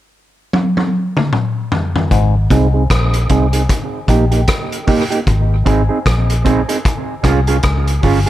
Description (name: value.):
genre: dub reggae.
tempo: 76 BPM.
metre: 4/4.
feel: swing 60% on 16ths.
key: Ab major.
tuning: A4 = 440 Hz.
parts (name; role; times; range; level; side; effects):
vintage drum kit; drums; 0.5-8.3 s; hi-hat, kick drum, rim click, toms; -16 LUFS; left 1 dB; none.
mellow clav; riff; 2.1-2.3 s; Ab2; -23 LUFS; left 9 dB; low-pass filter, tape echo.
vintage muted fingered electric bass; bass; 2.1-8.2 s; G1 to Db2; -14 LUFS; equal; none.
mellow electric guitar; accompaniment; 2.5-8.3 s; Bb3 to Ab4; -17 LUFS; right 4 dB; low-pass filter, tape echo.
room: light reverb.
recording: echo-heavy mix.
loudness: -12 LUFS.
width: side -14 dB against mid.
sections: 0.0-2.1 A section; 2.1-8.3 B section.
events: drum fill 0.5-2.1; filter sweep 2.1-8.3.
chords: 0.0 N.C.; 2.1 Ab; 3.7 Eb; 5.3 Ab; 6.8 Db.